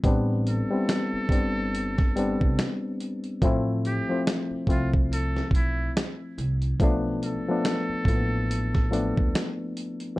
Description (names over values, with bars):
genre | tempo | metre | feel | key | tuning
lo-fi hip hop | 71 BPM | 4/4 | swing 57% on 16ths | A minor | A4 = 445 Hz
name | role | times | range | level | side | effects
barky reed electric piano | accompaniment | 0.0-10.2 s | F3 to E4 | -27 LUFS | left 2 dB | cassette tape, low-pass filter
upright bass | bass | 0.0-9.3 s | G1 to D2 | -28 LUFS | equal | none
dusty soul sampler-style drum kit | drums | 0.0-10.2 s | finger snaps, hi-hat, kick drum, snare drum | -24 LUFS | equal | none
trumpet with metal mute | melody | 0.5-9.5 s | E4 to A4 | -34 LUFS | right 1 dB | low-pass filter, plate reverb
room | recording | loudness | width
light reverb | dark, warm production | -23 LUFS | side -19 dB against mid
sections
0.0-10.2 A section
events
none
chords
0.0 Am11; 3.4 Fmaj7/A; 6.8 Dm69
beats
| 0.04 0.88 1.73 2.57 | 3.42 4.26 5.11 5.95 | 6.80 7.64 8.49 9.33 | 10.18